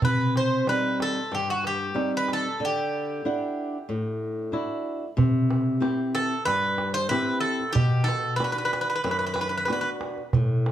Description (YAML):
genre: greek folk, Greek bouzouki band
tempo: 93 BPM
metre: 4/4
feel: straight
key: unclear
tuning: A4 = 440 Hz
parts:
  - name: Greek bouzouki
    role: melody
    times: 0.0-9.9 s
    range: F#4 to C5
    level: -26 LUFS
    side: right 1 dB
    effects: none
  - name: flamenco guitar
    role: accompaniment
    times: 0.0-10.7 s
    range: F#2 to F#5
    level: -27 LUFS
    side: left 1 dB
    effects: none
  - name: darbuka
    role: percussion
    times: 0.0-10.7 s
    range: none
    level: -26 LUFS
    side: right 2 dB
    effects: none
room: light reverb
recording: small room ambience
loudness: -23 LUFS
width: side -11 dB against mid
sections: 0.0-5.2 A section; 5.2-10.7 B section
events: break 2.6-5.2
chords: 0.0 Cm; 2.6 Dadd9; 5.2 C; 7.8 Bm